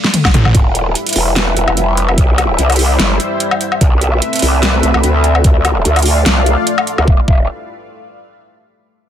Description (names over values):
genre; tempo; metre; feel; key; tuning
heavy wobble dubstep; 147 BPM; 4/4; swing 54% on 16ths, half-time; E phrygian; A4 = 440 Hz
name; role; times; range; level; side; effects
lush unison pad; sustained chords; 0.0-7.3 s; G3 to F5; -19 LUFS; left 1 dB; chorus, phaser, sidechain pumping
dubstep drum kit; drums; 0.0-7.1 s; hi-hat, ride cymbal, snare drum, toms, woodblock; -15 LUFS; equal; none
electronic kick drum; drums; 0.2-7.4 s; none; -11 LUFS; equal; none
snarling distorted saw bass; bass; 0.3-0.5 s; A1; -15 LUFS; equal; distortion, overdrive
growl bass; bass; 0.5-7.5 s; E1 to D2; -13 LUFS; equal; chorus, overdrive
room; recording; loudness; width
digital ambience; dense, heavily limited modern master; -10 LUFS; side -10 dB against mid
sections
0.5-7.1 A section; 7.1-8.7 B section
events
drum fill 0.0-0.5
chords
0.0 Dm; 0.5 Em; 2.2 C; 3.8 Amadd9/C; 5.4 Dm; 7.1 Em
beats
0.14 | 0.55 0.95 1.36 1.77 | 2.18 2.59 2.99 3.40 | 3.81 4.22 4.63 5.04 | 5.44 5.85 6.26 6.67 | 7.08